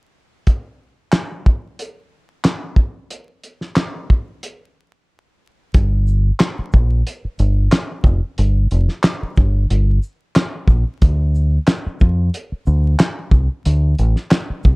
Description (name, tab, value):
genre	hip hop, boom-bap hip-hop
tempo	91 BPM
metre	4/4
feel	swing 55% on 16ths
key	G minor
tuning	A4 = 441 Hz
part	cloth-damped thuddy drum kit	drums	0.5-14.8 s	handclaps, hi-hat, kick drum, shaker, snare drum	-15 LUFS	equal	none
part	deep dub fingered electric bass	bass	5.7-14.8 s	F1 to F2	-15 LUFS	equal	none
room	little or no reverb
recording	dark, warm production, vinyl crackle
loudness	-15 LUFS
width	side -30 dB against mid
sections	0.5-5.7 A section; 5.7-14.8 B section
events	drums muted 5.1-5.7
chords	none